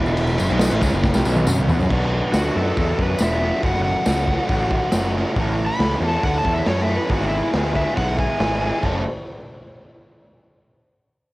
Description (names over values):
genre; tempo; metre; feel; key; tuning
garage rock duo or trio; 138 BPM; 4/4; straight; F# minor; A4 = 439 Hz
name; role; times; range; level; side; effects
overdriven semi-hollow guitar; riff; 0.0-9.0 s; E2 to A4; -23 LUFS; equal; cassette tape
fuzz picked electric bass; bass; 0.0-9.0 s; E1 to F#2; -23 LUFS; equal; overdrive
tambourine; percussion; 0.1-5.0 s; none; -35 LUFS; left 3 dB; none
raw garage drum kit; drums; 0.2-8.9 s; china cymbal, crash cymbal, hi-hat, kick drum, snare drum, toms; -22 LUFS; equal; cassette tape
overdriven slide guitar; melody; 2.3-8.8 s; E4 to B5; -25 LUFS; equal; cassette tape
room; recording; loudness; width
little or no reverb; home recording on cassette; -17 LUFS; side -19 dB against mid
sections
0.0-1.9 A section; 1.9-8.8 B section; 8.8-10.6 C section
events
drum fill 1.0-1.9; electric slide guitar solo 1.9-8.8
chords
0.4 F#m; 1.9 Bm; 3.6 F#m; 5.4 A; 7.1 E/G#; 8.8 F#m